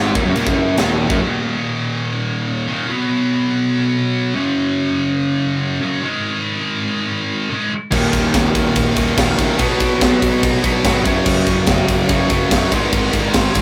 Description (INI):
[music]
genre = heavy metal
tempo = 143 BPM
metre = 4/4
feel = straight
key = Eb minor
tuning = A4 = 440 Hz
[part]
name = distorted electric guitar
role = riff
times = 0.0-1.2, 7.9-13.6 s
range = Eb2 to B3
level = -21 LUFS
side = equal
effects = overdrive
[part]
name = scooped high-gain guitar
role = riff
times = 0.0-13.6 s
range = Eb2 to B3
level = -21 LUFS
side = equal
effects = distortion
[part]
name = fuzz picked electric bass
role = bass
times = 0.0-1.2, 7.9-13.6 s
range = Eb1 to Db2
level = -26 LUFS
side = equal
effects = overdrive
[part]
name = tight metal drum kit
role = drums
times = 0.2-1.2, 7.9-13.6 s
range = crash cymbal, kick drum, ride cymbal, snare drum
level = -21 LUFS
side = equal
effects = none
[sound]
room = moderate studio ambience, RT60 0.5 s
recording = rough rehearsal-room recording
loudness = -17 LUFS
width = mono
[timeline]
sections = 0.0-1.2 A section; 1.2-13.6 B section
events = none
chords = 0.0 Ebm; 1.2 Eb5; 2.9 B5; 4.4 Gb5; 6.0 Ab5; 7.9 Eb5; 9.6 B5; 11.0 Gb5; 12.7 Ab5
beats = 0.36 0.78 | 1.21 1.63 2.05 2.47 | 2.89 3.31 3.73 4.14 | 4.57 4.98 5.40 5.82 | 6.24 6.66 7.08 7.50 | 7.92 8.33 8.75 9.17 | 9.59 10.01 10.42 10.84 | 11.26 11.68 12.09 12.51 | 12.93 13.35